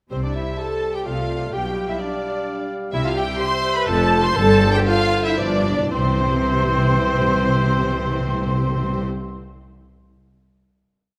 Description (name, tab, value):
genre	quick classical-period movement for symphony orchestra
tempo	111-130 BPM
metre	3/4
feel	straight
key	C major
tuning	A4 = 439 Hz
part	rich chamber violin section	melody	0.1-9.0 s	C5 to C6	-30 LUFS	equal	none
part	concert flute	second line	0.1-9.0 s	C5 to C6	-30 LUFS	equal	none
part	mellow clarinet	second line	0.1-9.0 s	B4 to F5	-33 LUFS	equal	none
part	mellow cor anglais	second line	0.1-9.0 s	C4 to C5	-32 LUFS	equal	none
part	rich chamber violin section	second line	0.1-9.0 s	C5 to C6	-34 LUFS	equal	none
part	clear studio viola section	accompaniment	0.1-9.0 s	C4 to C5	-31 LUFS	equal	none
part	dark bassoon	accompaniment	0.1-9.0 s	D3 to A3	-30 LUFS	equal	none
part	mellow French horn section	sustained chords	0.1-9.0 s	C4 to C5	-32 LUFS	equal	none
part	rich chamber double bass section	bass	0.1-9.0 s	F1 to C2	-28 LUFS	equal	none
part	rich studio cello section	bass	0.1-9.0 s	F2 to C3	-28 LUFS	equal	none
part	timpani	percussion	0.1-0.8, 2.9-9.0 s	G2 to C3	-28 LUFS	equal	none
room	wet scoring stage reverb, RT60 1.6 s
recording	none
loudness	-20 LUFS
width	mono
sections	0.1-5.9 A section; 5.9-9.1 final chord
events	slowing down 2.2-5.9; timpani fill 5.4-5.9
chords	0.1 C5; 1.1 Dm7/C; 1.5 G7/B; 2.9 C; 3.9 F; 4.4 Gsus4; 5.4 G7; 5.9 C